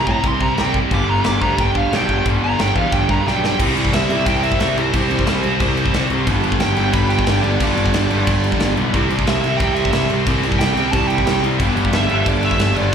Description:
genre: punk rock.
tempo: 180 BPM.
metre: 4/4.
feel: straight.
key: unclear.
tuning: A4 = 440 Hz.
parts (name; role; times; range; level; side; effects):
bluesy overdriven lead guitar; melody; 0.0-12.9 s; C5 to D6; -22 LUFS; right 2 dB; distortion, slapback echo.
cranked stack guitar; riff; 0.0-12.9 s; G2 to C4; -23 LUFS; right 12 dB; overdrive, slapback echo.
heavy high-gain guitar; riff; 0.0-12.9 s; G2 to E4; -25 LUFS; equal; distortion, slapback echo.
overdriven electric guitar; riff; 0.0-12.9 s; G2 to C4; -25 LUFS; left 13 dB; slapback echo.
fuzz picked electric bass; bass; 0.1-12.9 s; G1 to C3; -20 LUFS; left 1 dB; overdrive.
big rock drum kit; drums; 0.1-12.8 s; crash cymbal, kick drum, snare drum; -21 LUFS; equal; none.
room: small room ambience.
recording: live gig heard through the venue's PA, club reverb.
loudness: -15 LUFS.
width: side -7 dB against mid.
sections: 0.0-3.6 A section; 3.6-12.9 B section.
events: lead electric guitar solo 0.0-3.6; drum fill 3.3-3.6.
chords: 0.0 C; 0.9 G; 3.6 C; 6.3 G; 8.9 C; 11.6 G.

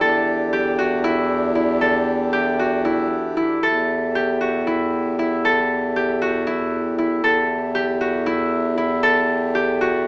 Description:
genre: contemporary instrumental, contemporary.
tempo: 233 BPM (eighths).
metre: 7/8.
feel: straight.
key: E minor.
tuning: A4 = 440 Hz.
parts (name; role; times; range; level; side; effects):
pedal harmonium; sustained chords; 0.0-10.1 s; E3 to G4; -26 LUFS; equal; none.
concert harp; arpeggios; 0.0-10.1 s; E4 to A4; -19 LUFS; equal; none.
clear bass clarinet; bass; 0.0-10.1 s; E2; -23 LUFS; equal; none.
room: light reverb.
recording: small speaker sound.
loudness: -17 LUFS.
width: side -29 dB against mid.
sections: 0.0-10.1 A section.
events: none.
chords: 0.0 Em7.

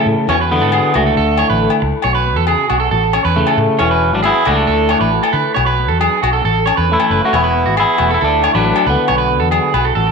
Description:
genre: highlife guitar band.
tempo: 136 BPM.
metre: 4/4.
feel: straight.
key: unclear.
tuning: A4 = 441 Hz.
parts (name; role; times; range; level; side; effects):
electric guitar at the edge of break-up; melody; 0.0-9.7 s; C#3 to F#4; -15 LUFS; left 1 dB; spring reverb.
electric guitar at the edge of break-up; accompaniment; 0.0-10.1 s; A2 to A4; -24 LUFS; left 9 dB; none.
electric guitar at the edge of break-up; arpeggios; 0.0-10.1 s; F#4 to C#5; -17 LUFS; right 9 dB; slapback echo.
vintage muted fingered electric bass; bass; 0.1-10.1 s; E1 to D3; -19 LUFS; equal; none.
agogo bells; percussion; 0.3-9.9 s; none; -21 LUFS; left 12 dB; none.
room: wet echo chamber reverb, RT60 1.8 s, studio reverb.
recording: 1960s-style stereo with parts hard left and right.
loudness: -12 LUFS.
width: side -5 dB against mid.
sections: 0.0-10.1 A section.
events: none.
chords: 0.3 Esus2; 1.2 Dsus2; 2.0 B5; 2.9 A; 3.8 Esus2; 4.7 Dsus2; 5.6 Bm; 6.5 A; 7.3 Esus2; 8.2 Dsus2; 9.1 Bm.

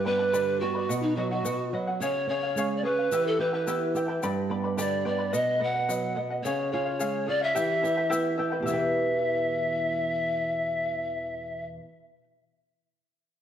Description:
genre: andean folk, Andean ensemble.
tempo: 108 BPM.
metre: 2/4.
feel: straight.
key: E dorian.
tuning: A4 = 440 Hz.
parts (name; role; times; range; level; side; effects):
breathy mellow pan flute; melody; 0.0-11.6 s; D#4 to F#5; -28 LUFS; equal; none.
charango; accompaniment; 0.0-12.2 s; E4 to B5; -31 LUFS; left 1 dB; none.
nylon-string guitar; accompaniment; 0.0-11.9 s; E2 to B4; -31 LUFS; right 3 dB; none.
egg shaker; percussion; 0.3-8.9 s; none; -43 LUFS; left 8 dB; none.
room: moderate scoring stage reverb, RT60 1.6 s.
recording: dark, warm production.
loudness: -25 LUFS.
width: side -9 dB against mid.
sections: 0.0-8.7 A section; 8.7-10.9 B section.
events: none.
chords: 0.0 G; 0.9 B; 2.0 C#; 3.1 Em; 4.2 G; 5.3 B; 6.4 C#; 7.6 Em.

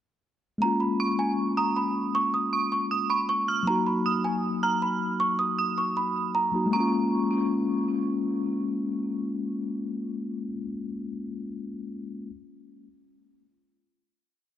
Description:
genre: hip hop, trap.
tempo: 157 BPM.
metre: 4/4.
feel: half-time.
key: Bb phrygian.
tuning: A4 = 440 Hz.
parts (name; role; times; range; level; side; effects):
small celesta; melody; 0.6-7.8 s; Ab5 to Eb6; -27 LUFS; right 2 dB; low-pass filter, tape echo.
mellow tine electric piano; accompaniment; 0.6-12.3 s; Gb3 to Gb4; -28 LUFS; left 2 dB; medium stereo tremolo, low-pass filter, tape echo.
dark detuned synth bell; second line; 1.0-7.8 s; Db6 to F6; -31 LUFS; right 5 dB; chorus, tremolo, tape echo.
room: light reverb, small room ambience.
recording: echo-heavy mix.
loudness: -25 LUFS.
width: side -11 dB against mid.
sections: 0.6-6.7 breakdown; 6.7-9.8 final chord.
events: none.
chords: 0.6 Bbm7; 3.7 Ebm; 6.7 Bbm7.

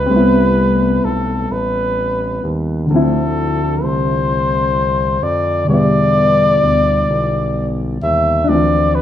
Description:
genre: slow six-eight R&B.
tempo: 43 BPM (dotted quarters).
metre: 6/8.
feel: straight.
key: D dorian.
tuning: A4 = 444 Hz.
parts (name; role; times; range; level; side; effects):
warm flugelhorn; melody; 0.0-9.0 s; A4 to E5; -17 LUFS; left 1 dB; none.
overdriven reed electric piano; accompaniment; 0.0-9.0 s; B2 to E4; -17 LUFS; left 1 dB; phaser.
smooth synth bass; bass; 0.0-9.0 s; A1 to F2; -20 LUFS; equal; none.
room: moderate studio reverb, RT60 0.6 s.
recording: rough home demo mix, studio ambience.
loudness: -13 LUFS.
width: side -10 dB against mid.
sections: 0.0-9.0 A section.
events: none.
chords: 0.1 Am9; 2.9 Dm9; 5.7 Em7; 8.5 Dm9.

